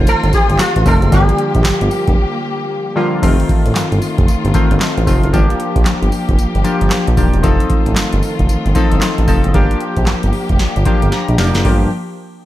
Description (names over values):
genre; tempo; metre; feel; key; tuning
R&B, new jack swing; 114 BPM; 4/4; swing 62% on 16ths; G minor; A4 = 445 Hz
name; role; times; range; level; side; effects
sitar; melody; 0.0-2.9 s; F4 to A4; -19 LUFS; equal; ping-pong delay
warm analog keys; accompaniment; 0.0-11.9 s; D3 to Bb5; -18 LUFS; left 2 dB; chorus
rich symphonic string section; sustained chords; 0.0-11.9 s; Eb3 to G4; -24 LUFS; left 1 dB; none
smooth synth bass; bass; 0.0-11.9 s; Eb1 to Bb1; -16 LUFS; equal; none
booming analog drum machine; drums; 0.1-11.9 s; crash cymbal, handclaps, hi-hat, kick drum, snare drum, tambourine; -15 LUFS; equal; none
room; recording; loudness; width
little or no reverb; none; -12 LUFS; side -14 dB against mid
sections
0.0-3.2 A section; 3.2-11.6 B section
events
break 2.2-3.2; synth keys fill 10.9-11.6; drum fill 11.1-11.6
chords
0.0 F7; 1.1 Gm7; 3.2 F7; 5.3 Gm7; 7.4 F7; 9.5 Gm7